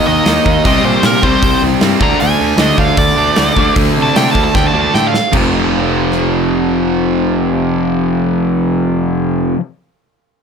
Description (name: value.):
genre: punk rock.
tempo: 153 BPM.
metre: 4/4.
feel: straight.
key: F major.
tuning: A4 = 440 Hz.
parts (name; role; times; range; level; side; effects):
nasal lead guitar with a parked wah; melody; 0.0-5.3 s; Bb4 to Bb5; -15 LUFS; right 1 dB; overdrive.
cranked stack guitar; riff; 0.0-9.6 s; F2 to Eb4; -16 LUFS; right 15 dB; overdrive.
sludgy distorted guitar; riff; 0.0-9.6 s; F2 to Eb4; -16 LUFS; left 14 dB; overdrive.
fuzz picked electric bass; bass; 0.1-9.5 s; F1 to C3; -19 LUFS; equal; overdrive.
big rock drum kit; drums; 0.3-6.2 s; crash cymbal, hi-hat, kick drum, rim click, snare drum; -17 LUFS; equal; none.
room: light reverb.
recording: none.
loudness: -10 LUFS.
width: side -6 dB against mid.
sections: 0.0-5.3 A section; 5.3-8.5 B section.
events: lead electric guitar solo 0.0-5.3; drum fill 4.5-5.3.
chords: 0.0 Eb5; 0.6 C5; 2.0 D5; 5.3 F5.